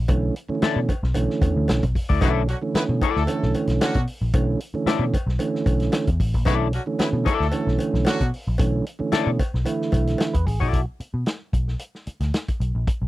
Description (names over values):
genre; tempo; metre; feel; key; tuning
funk; 113 BPM; 4/4; straight; B minor; A4 = 440 Hz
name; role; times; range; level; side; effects
vintage muted picked electric bass; bass; 0.0-13.1 s; A1 to B2; -23 LUFS; equal; none
mellow tonewheel organ; stabs; 0.1-10.9 s; C#3 to B4; -24 LUFS; right 3 dB; none
warm soul drum kit; drums; 0.1-13.0 s; hi-hat, kick drum, snare drum; -24 LUFS; equal; none
cowbell; percussion; 0.1-10.3 s; none; -35 LUFS; left 1 dB; none
clean electric guitar; accompaniment; 0.6-10.8 s; E4 to D5; -24 LUFS; left 10 dB; analog chorus
clear horn section; second line; 2.2-8.3 s; D3 to B4; -28 LUFS; right 1 dB; none
room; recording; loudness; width
little or no reverb; dry, close 1970s-style studio recording; -20 LUFS; side -16 dB against mid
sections
0.0-10.7 A section; 10.7-13.1 B section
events
none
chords
0.0 Bm11; 10.7 B5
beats
| 0.08 0.62 1.15 1.68 | 2.21 2.75 3.28 3.81 | 4.34 4.87 5.40 5.93 | 6.47 7.00 7.53 8.06 | 8.59 9.13 9.66 10.19 | 10.73 11.26 11.80 12.34 | 12.87